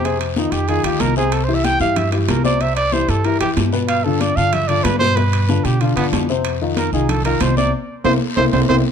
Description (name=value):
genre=Afro-Cuban jazz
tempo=187 BPM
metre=4/4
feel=straight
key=unclear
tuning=A4 = 438 Hz
part: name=mellow trumpet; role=melody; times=0.0-8.8 s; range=B3 to G5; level=-20 LUFS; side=right 4 dB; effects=tape echo
part: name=dark baby grand piano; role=accompaniment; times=0.0-8.8 s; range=B2 to C5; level=-20 LUFS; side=left 5 dB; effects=none
part: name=upright bass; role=bass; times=0.0-8.8 s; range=C2 to B2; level=-20 LUFS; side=right 1 dB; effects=none
part: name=congas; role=percussion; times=0.0-8.8 s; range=none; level=-25 LUFS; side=left 5 dB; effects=none
part: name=guiro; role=percussion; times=0.0-8.8 s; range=none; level=-32 LUFS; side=left 6 dB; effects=none
part: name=timbales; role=percussion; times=0.1-8.8 s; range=none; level=-26 LUFS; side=right 6 dB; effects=none
room=light reverb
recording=dark, warm production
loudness=-15 LUFS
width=side -7 dB against mid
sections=0.0-8.9 A section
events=trumpet solo 0.0-8.9; band accent 7.7-8.9; drum fill 8.5-8.9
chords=0.0 F5; 1.3 C; 3.9 G7; 6.4 F5; 7.7 C7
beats=| 0.04 0.36 0.69 1.01 | 1.33 1.65 1.97 2.29 | 2.61 2.93 3.25 3.57 | 3.89 4.21 4.53 4.85 | 5.17 5.49 5.81 6.13 | 6.45 6.77 7.09 7.41 | 7.73 8.05 8.37 8.69